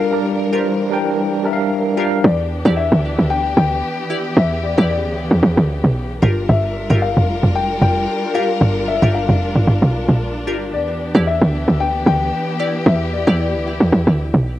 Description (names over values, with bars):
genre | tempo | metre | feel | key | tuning
amapiano | 113 BPM | 4/4 | swing 55% on 16ths | E dorian | A4 = 440 Hz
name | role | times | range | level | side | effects
dark concert grand piano | melody | 0.0-13.9 s | Bb4 to G5 | -23 LUFS | left 6 dB | cassette tape, tape echo
tine electric piano | accompaniment | 0.0-2.3 s | G3 to G5 | -17 LUFS | right 1 dB | medium stereo tremolo
warm studio string section | sustained chords | 0.0-14.6 s | C#3 to Bb4 | -24 LUFS | left 1 dB | none
glassy wavetable pluck | stabs | 0.5-13.4 s | E4 to D5 | -26 LUFS | left 1 dB | chorus, tape echo
tight log drum bass | bass | 2.2-14.6 s | F1 to E2 | -15 LUFS | right 1 dB | none
room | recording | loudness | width
light reverb, small room ambience | home recording on cassette | -14 LUFS | side -14 dB against mid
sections
0.0-2.2 A section; 2.2-14.6 B section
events
drop 2.2-14.6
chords
0.0 Gm7; 2.2 Em7; 6.2 Gm7; 10.7 Em7